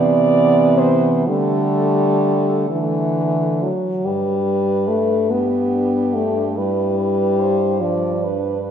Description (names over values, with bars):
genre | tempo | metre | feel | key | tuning
classical, lyrical piece for horn quartet | 42-50 BPM (dotted quarters) | 6/8 | rubato | G major | A4 = 440 Hz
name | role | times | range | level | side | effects
mellow French horn | melody | 0.0-8.7 s | D4 to D5 | -22 LUFS | right 2 dB | none
clear French horn | second line | 0.0-8.7 s | A3 to D5 | -22 LUFS | right 6 dB | none
mellow French horn | accompaniment | 0.0-8.2 s | E3 to B3 | -19 LUFS | left 2 dB | none
warm French horn | bass | 0.0-8.7 s | G2 to D3 | -22 LUFS | right 1 dB | none
room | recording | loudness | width
wet scoring stage reverb, RT60 1.8 s | heard from further back in the room | -15 LUFS | side -8 dB against mid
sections
0.0-4.0 A section; 4.0-8.7 B section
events
none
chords
0.0 Cmaj7; 1.3 Dsus4; 2.7 D5; 4.0 G